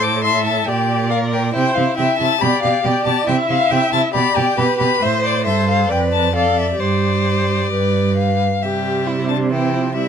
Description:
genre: quick classical-period movement for string quartet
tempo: 137 BPM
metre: 4/4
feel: straight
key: C major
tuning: A4 = 440 Hz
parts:
  - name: rich violin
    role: melody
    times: 0.0-10.1 s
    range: D5 to D6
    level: -20 LUFS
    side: left 6 dB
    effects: none
  - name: rich violin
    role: second line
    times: 0.0-10.1 s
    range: D4 to D5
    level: -22 LUFS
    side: left 3 dB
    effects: none
  - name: rich viola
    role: accompaniment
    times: 0.0-10.1 s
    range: E3 to E5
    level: -22 LUFS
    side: right 1 dB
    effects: none
  - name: rich cello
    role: bass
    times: 0.0-10.1 s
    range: F2 to C3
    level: -20 LUFS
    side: right 5 dB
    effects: none
room: light reverb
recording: close, detailed microphones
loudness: -15 LUFS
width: side -8 dB against mid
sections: 0.0-8.6 A section; 8.6-10.1 B section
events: none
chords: 0.0 Amadd11; 0.7 Gm/Bb; 1.5 C; 2.4 G/B; 3.3 C; 4.2 G/B; 5.0 Am; 5.9 Dm/F; 6.8 Gsus4; 8.6 C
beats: 0.24 0.68 1.11 | 1.55 1.98 2.41 2.85 | 3.28 3.72 4.16 4.59 | 5.03 5.46 5.90 6.35 | 6.81 7.27 7.72 8.18 | 8.63 9.07 9.51 9.95

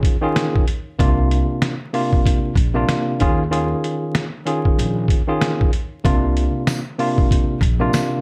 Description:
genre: hip hop, boom-bap hip-hop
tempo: 95 BPM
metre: 4/4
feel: swing 58% on 16ths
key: unclear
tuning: A4 = 440 Hz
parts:
  - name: tine electric piano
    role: accompaniment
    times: 0.0-8.2 s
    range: C3 to Ab4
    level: -23 LUFS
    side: equal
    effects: cassette tape, high-pass filter, low-pass filter, plate reverb
  - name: trip hop sampler-style drum kit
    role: drums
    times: 0.0-8.1 s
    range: hi-hat, kick drum, snare drum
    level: -21 LUFS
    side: equal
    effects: vintage 12-bit sampler grit
  - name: upright bass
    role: bass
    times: 1.0-7.9 s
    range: Bb1 to Eb2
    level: -23 LUFS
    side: equal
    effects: none
  - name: tambourine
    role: percussion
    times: 6.7-8.1 s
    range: none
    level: -37 LUFS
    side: equal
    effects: none
room: light reverb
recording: vinyl crackle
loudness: -19 LUFS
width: mono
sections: 0.0-6.0 A section; 6.0-8.2 A section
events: none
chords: 0.0 Eb9sus4; 1.0 C9sus4; 3.2 Eb9sus4; 6.0 C9sus4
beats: 0.36 | 0.99 1.62 2.25 2.89 | 3.52 4.15 4.78 5.41 | 6.04 6.68 7.31 7.94

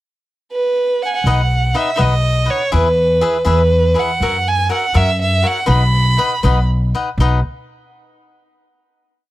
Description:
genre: mexican folk, mariachi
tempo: 81 BPM (dotted quarters)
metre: 6/8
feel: straight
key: B major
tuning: A4 = 440 Hz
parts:
  - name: rich violin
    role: melody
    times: 0.5-6.6 s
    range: B4 to B5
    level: -16 LUFS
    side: right 2 dB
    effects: none
  - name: upright bass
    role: bass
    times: 1.2-7.4 s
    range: B1 to F#2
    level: -15 LUFS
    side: equal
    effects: none
  - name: cavaquinho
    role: accompaniment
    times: 1.3-7.4 s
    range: D#4 to F#5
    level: -21 LUFS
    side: left 4 dB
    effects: none
room: small room reverb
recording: dry, close 1970s-style studio recording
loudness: -13 LUFS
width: side -16 dB against mid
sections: 0.0-1.2 pickup bar; 1.2-7.2 A section; 7.2-8.7 final chord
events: none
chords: 0.0 N.C.; 1.2 B; 2.7 E; 4.2 F#7; 5.7 B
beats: 0.50 | 1.25 1.99 | 2.73 3.47 | 4.21 4.94 | 5.68 6.43 | 7.18

